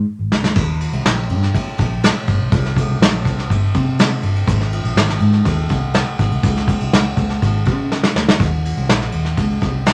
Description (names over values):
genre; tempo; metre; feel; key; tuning
uptempo 1960s-style soul; 123 BPM; 4/4; straight; Eb mixolydian; A4 = 441 Hz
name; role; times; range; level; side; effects
vintage muted fingered electric bass; bass; 0.0-9.9 s; G1 to Db3; -21 LUFS; equal; none
vintage brush drum kit; drums; 0.3-9.9 s; crash cymbal, hi-hat, kick drum, ride cymbal, snare drum; -19 LUFS; equal; none
room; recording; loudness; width
wet club reverb, RT60 0.8 s; none; -17 LUFS; mono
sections
0.6-9.9 A section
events
drum fill 0.0-0.6, 7.9-8.4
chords
none